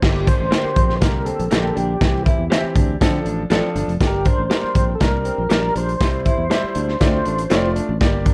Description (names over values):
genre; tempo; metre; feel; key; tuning
uptempo 1960s-style soul; 120 BPM; 4/4; straight; G dorian; A4 = 440 Hz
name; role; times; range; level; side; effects
mellow tonewheel organ; melody; 0.0-7.7 s; G4 to C5; -26 LUFS; equal; overdrive, chorus vibrato, slow rotary speaker, plate reverb
warm baby grand piano; accompaniment; 0.0-8.3 s; D3 to D5; -27 LUFS; equal; none
fingered electric bass; bass; 0.0-8.3 s; F1 to D3; -26 LUFS; equal; none
crunchy breakbeat drum kit; drums; 0.0-8.3 s; crash cymbal, hi-hat, kick drum, snare drum; -21 LUFS; equal; none
electric guitar through a small old amp; riff; 0.3-8.3 s; Bb3 to E4; -31 LUFS; equal; none
electric guitar through a small old amp; stabs; 0.5-7.6 s; F4 to G5; -29 LUFS; equal; tremolo
room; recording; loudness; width
light reverb; dark, warm production; -19 LUFS; mono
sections
0.0-8.3 A section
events
none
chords
0.0 Gm; 2.0 C; 3.0 Dm; 4.0 Gm; 6.0 C; 7.0 Dm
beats
| 0.02 0.52 1.02 1.51 | 2.01 2.51 3.01 3.51 | 4.01 4.51 5.01 5.51 | 6.01 6.51 7.01 7.51 | 8.01